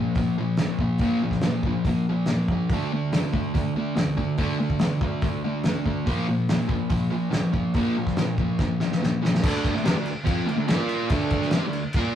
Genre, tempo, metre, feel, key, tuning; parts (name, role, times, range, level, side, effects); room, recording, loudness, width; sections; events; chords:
garage rock duo or trio; 142 BPM; 4/4; straight; D minor; A4 = 439 Hz
fuzz guitar; riff; 0.0-12.2 s; Bb2 to Bb4; -24 LUFS; equal; distortion
cloth-damped thuddy drum kit; drums; 0.2-12.1 s; crash cymbal, hi-hat, kick drum, snare drum; -25 LUFS; equal
moderate studio reverb, RT60 0.6 s; rough rehearsal-room recording; -22 LUFS; side -10 dB against mid
0.0-9.4 A section; 9.4-12.2 B section
drum fill 8.6-9.4
0.0 Bb5; 2.7 D5; 6.1 Bb5; 9.4 Dm; 10.7 Bb5; 11.1 D5